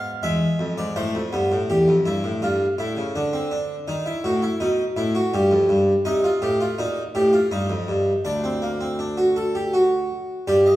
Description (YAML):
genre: classical, baroque-style 3-part fugue for harpsichord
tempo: 82 BPM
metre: 3/4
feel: straight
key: unclear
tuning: A4 = 441 Hz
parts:
  - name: harpsichord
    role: solo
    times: 0.0-10.8 s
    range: D2 to E5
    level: -19 LUFS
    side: equal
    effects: none
room: wet recital hall reverb, RT60 1.5 s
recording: heard from further back in the room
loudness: -19 LUFS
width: side -15 dB against mid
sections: 0.0-1.7 A section; 1.7-10.5 B section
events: none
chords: 0.0 E7; 1.0 Am; 1.7 A7/E; 3.2 Csus2/D; 3.9 B7; 5.3 Fsus2; 6.1 Cm (rootless); 8.3 D